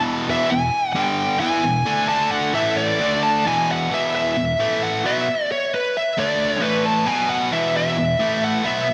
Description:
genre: rock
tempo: 133 BPM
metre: 4/4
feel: straight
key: E mixolydian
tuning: A4 = 440 Hz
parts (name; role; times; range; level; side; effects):
- high-gain lead guitar; melody; 0.0-8.9 s; B4 to A5; -22 LUFS; equal; distortion, analog delay
- distorted electric guitar; riff; 0.0-8.9 s; E2 to E4; -24 LUFS; equal; overdrive, slapback echo
room: wet lush hall reverb, RT60 2.2 s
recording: big arena sound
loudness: -20 LUFS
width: mono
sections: 0.0-3.9 A section; 3.9-8.9 B section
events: none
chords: 0.0 E; 1.0 G5; 1.4 E; 2.1 D5; 2.5 A5; 3.0 D5; 3.5 E5; 4.6 A5; 5.0 E5; 6.2 D5; 6.6 A5; 7.1 B5; 7.5 E5; 8.2 A5

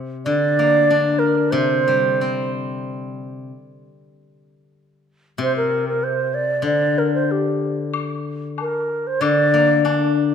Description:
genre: chinese traditional, Chinese chamber ensemble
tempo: 94 BPM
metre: 2/4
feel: rubato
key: unclear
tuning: A4 = 440 Hz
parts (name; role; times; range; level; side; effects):
- steel-string zither; accompaniment; 0.0-10.3 s; C3 to D4; -21 LUFS; left 5 dB; none
- xiao; melody; 0.3-2.5, 5.4-10.2 s; G4 to D5; -19 LUFS; right 3 dB; none
- woodblock; percussion; 7.9-10.0 s; none; -30 LUFS; left 7 dB; none
room: wet recital hall reverb, RT60 1.8 s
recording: none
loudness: -17 LUFS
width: side -7 dB against mid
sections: 0.0-7.9 A section; 7.9-10.3 B section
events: none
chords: none

